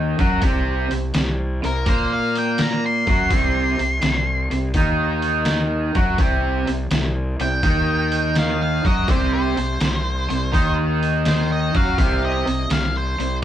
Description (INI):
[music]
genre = blues rock power trio and southern rock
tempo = 83 BPM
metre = 4/4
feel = swing 68% on 8ths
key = C minor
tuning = A4 = 439 Hz
[part]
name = raw garage guitar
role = riff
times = 0.0-13.4 s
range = C3 to Bb4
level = -23 LUFS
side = right 1 dB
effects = overdrive
[part]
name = fuzz fingered electric bass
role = bass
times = 0.0-13.4 s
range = C2 to Bb2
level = -23 LUFS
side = equal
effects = overdrive
[part]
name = trip hop sampler-style drum kit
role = drums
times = 0.2-13.3 s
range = hi-hat, kick drum, snare drum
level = -22 LUFS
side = equal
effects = overdrive
[part]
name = octave-fuzz lead guitar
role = melody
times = 1.7-13.3 s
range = Bb4 to C6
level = -24 LUFS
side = left 1 dB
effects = distortion
[sound]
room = moderate studio reverb, RT60 0.6 s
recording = band playing live in one room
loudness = -18 LUFS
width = side -11 dB against mid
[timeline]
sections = 0.0-13.4 A section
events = none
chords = 0.0 Cm